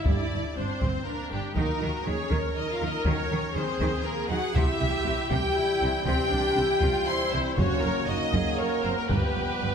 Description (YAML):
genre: cinematic, epic orchestral film score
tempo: 120 BPM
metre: 3/4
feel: straight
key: unclear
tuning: A4 = 441 Hz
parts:
  - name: rich studio violin section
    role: melody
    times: 0.0-9.7 s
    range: G4 to C6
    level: -33 LUFS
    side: left 2 dB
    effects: none
  - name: rich symphonic violin section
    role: second line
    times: 0.0-9.7 s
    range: G4 to C6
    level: -34 LUFS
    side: left 1 dB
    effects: none
  - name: rich symphonic viola section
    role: accompaniment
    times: 0.0-9.7 s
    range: C4 to B4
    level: -32 LUFS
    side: right 2 dB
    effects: none
  - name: clear French horn section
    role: sustained chords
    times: 0.0-9.7 s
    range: G3 to C5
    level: -32 LUFS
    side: left 2 dB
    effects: none
  - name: warm trombone section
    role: sustained chords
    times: 0.1-9.7 s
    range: D3 to B3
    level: -36 LUFS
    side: right 4 dB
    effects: none
  - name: rich studio double bass section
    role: bass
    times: 0.1-9.7 s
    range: F#1 to Eb2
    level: -33 LUFS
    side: right 3 dB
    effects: none
  - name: rich symphonic cello section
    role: bass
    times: 0.1-9.7 s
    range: F#2 to Eb3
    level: -33 LUFS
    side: right 2 dB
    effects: none
  - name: taiko ensemble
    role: drums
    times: 0.1-9.6 s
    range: none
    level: -30 LUFS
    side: left 1 dB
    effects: none
room: wet concert hall reverb, RT60 2.3 s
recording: none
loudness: -24 LUFS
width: side -7 dB against mid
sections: 0.0-9.7 A section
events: none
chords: 0.0 Gm; 1.6 Ebm; 4.6 C; 7.6 F#; 9.1 G7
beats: | 0.06 0.56 1.06 | 1.56 2.06 2.56 | 3.06 3.56 4.06 | 4.56 5.06 5.56 | 6.06 6.57 7.07 | 7.57 8.08 8.58 | 9.10 9.62